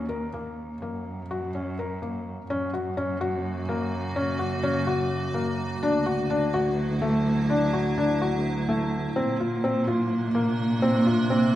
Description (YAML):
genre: contemporary instrumental, chamber music in an uneven meter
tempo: 252 BPM (eighths)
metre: 7/8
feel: straight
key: unclear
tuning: A4 = 440 Hz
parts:
  - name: felt-muted upright piano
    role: arpeggios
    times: 0.0-11.5 s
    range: A3 to A#4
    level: -27 LUFS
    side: left 2 dB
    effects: none
  - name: dark cello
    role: bass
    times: 0.0-11.6 s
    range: D2 to A#2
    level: -27 LUFS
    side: right 1 dB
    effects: none
  - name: icy glass pad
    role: sustained chords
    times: 3.2-11.6 s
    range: B#2 to F#4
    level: -30 LUFS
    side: right 2 dB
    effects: chorus, built-in reverb
room: moderate concert hall reverb, RT60 2.1 s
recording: none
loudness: -23 LUFS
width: side -13 dB against mid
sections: 0.0-2.5 A section; 2.5-11.6 B section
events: none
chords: 0.0 D#5; 0.8 F#; 5.8 Dadd9; 9.2 A#add9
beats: 0.09 0.33 0.57 | 0.81 1.05 1.29 1.53 1.77 2.01 2.25 | 2.49 2.73 2.96 3.20 3.44 3.68 3.92 | 4.16 4.40 4.63 4.87 5.11 5.35 5.59 | 5.83 6.07 6.30 6.54 6.78 7.02 7.26 | 7.49 7.73 7.97 8.21 8.45 8.69 8.92 | 9.16 9.40 9.64 9.88 10.12 10.35 10.59 | 10.83 11.07 11.31 11.55